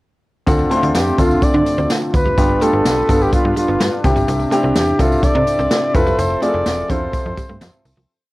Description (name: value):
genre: 1980s-style pop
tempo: 126 BPM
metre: 4/4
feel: straight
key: unclear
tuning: A4 = 445 Hz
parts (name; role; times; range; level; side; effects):
- warm baby grand piano; accompaniment; 0.5-8.1 s; G2 to C5; -18 LUFS; left 1 dB; cassette tape
- chorused pulse-width pad; sustained chords; 0.5-8.1 s; C3 to E5; -27 LUFS; equal; none
- slap-like FM bass; bass; 0.5-8.1 s; E1 to D3; -21 LUFS; equal; none
- jazz brush drum kit; drums; 0.5-8.0 s; hi-hat, kick drum, snare drum; -19 LUFS; equal; cassette tape
- tambourine; percussion; 0.5-8.0 s; none; -37 LUFS; right 6 dB; none
- direct-recorded clean electric guitar; riff; 0.6-8.1 s; F3 to D4; -25 LUFS; right 3 dB; lush chorus, cassette tape
- clear flugelhorn; melody; 1.0-7.9 s; F4 to D5; -20 LUFS; equal; none
room: moderate booth ambience, RT60 0.2 s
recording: home recording on cassette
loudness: -14 LUFS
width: side -19 dB against mid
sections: 0.5-8.1 pre-chorus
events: fade-out 6.2-8.1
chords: 0.5 Dm7; 2.4 G7; 4.0 Cadd9; 5.9 Fmaj7